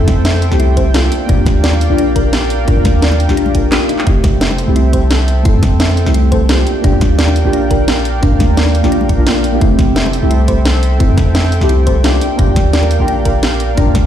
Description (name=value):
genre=liquid drum and bass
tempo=173 BPM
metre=4/4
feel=swing 54% on 16ths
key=unclear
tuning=A4 = 436 Hz
part: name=deep mellow chord stab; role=accompaniment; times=0.0-14.1 s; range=A3 to Bb4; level=-17 LUFS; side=equal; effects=chorus, phaser, ping-pong delay
part: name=warm analog pad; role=sustained chords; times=0.0-14.1 s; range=A4 to G5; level=-22 LUFS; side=right 1 dB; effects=chorus
part: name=thumb-piano-like synth pluck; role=arpeggios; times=0.0-13.9 s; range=D4 to E5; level=-22 LUFS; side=left 4 dB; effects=chorus, vintage 12-bit sampler grit, ping-pong delay
part: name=long sustained 808-style bass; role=bass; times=0.0-14.1 s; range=Eb1 to F2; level=-13 LUFS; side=equal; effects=none
part: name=electronic kick drum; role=drums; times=0.1-14.0 s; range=none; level=-14 LUFS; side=equal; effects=none
part: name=garage drum kit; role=drums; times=0.1-14.0 s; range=handclaps, hi-hat, snare drum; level=-18 LUFS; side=right 1 dB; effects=none
part: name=congas and bongos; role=percussion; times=0.1-14.0 s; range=none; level=-24 LUFS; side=left 5 dB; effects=none
room=light reverb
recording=played on a big sound system in a bare room, large studio reverb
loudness=-10 LUFS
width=side -10 dB against mid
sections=0.0-14.1 A section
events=drum fill 3.7-4.1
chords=0.0 Fmaj9; 1.1 Ebmaj9; 4.1 Fmaj9; 6.7 Ebmaj9; 9.6 Fmaj9; 12.2 Ebmaj9